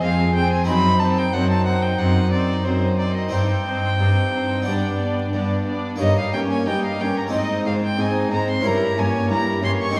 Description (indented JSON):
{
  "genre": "classical, baroque-style concerto movement with solo episodes",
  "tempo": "91 BPM",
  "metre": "4/4",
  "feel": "straight",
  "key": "unclear",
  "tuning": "A4 = 441 Hz",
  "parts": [
    { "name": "rich violin", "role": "melody", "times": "0.0-10.0 s", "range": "C5 to Db6", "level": "-27 LUFS", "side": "equal", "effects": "none" },
    { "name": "warm chamber violin section", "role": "melody", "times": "0.0-10.0 s", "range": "Bb4 to Eb5", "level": "-33 LUFS", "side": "equal", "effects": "none" },
    { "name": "rich studio violin section", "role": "second line", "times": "0.0-10.0 s", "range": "C4 to Ab4", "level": "-31 LUFS", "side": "equal", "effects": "none" },
    { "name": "harpsichord", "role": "accompaniment", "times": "0.0-10.0 s", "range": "F2 to D5", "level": "-29 LUFS", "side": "equal", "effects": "none" },
    { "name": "warm chamber viola section", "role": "accompaniment", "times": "0.0-10.0 s", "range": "G3 to C4", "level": "-30 LUFS", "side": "equal", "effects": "none" },
    { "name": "warm chamber cello section", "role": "bass", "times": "0.0-10.0 s", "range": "F2 to Ab2", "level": "-25 LUFS", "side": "equal", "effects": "none" }
  ],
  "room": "wet recital hall reverb, RT60 1.4 s",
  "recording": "heard from further back in the room, vinyl crackle",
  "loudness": "-21 LUFS",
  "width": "mono",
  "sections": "0.0-10.0 A section",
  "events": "none",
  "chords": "0.0 Fm; 0.7 F#dim7(no3); 3.3 Cm/G; 4.7 G; 6.0 Eb7/G; 7.3 Ab; 8.7 Gdim7"
}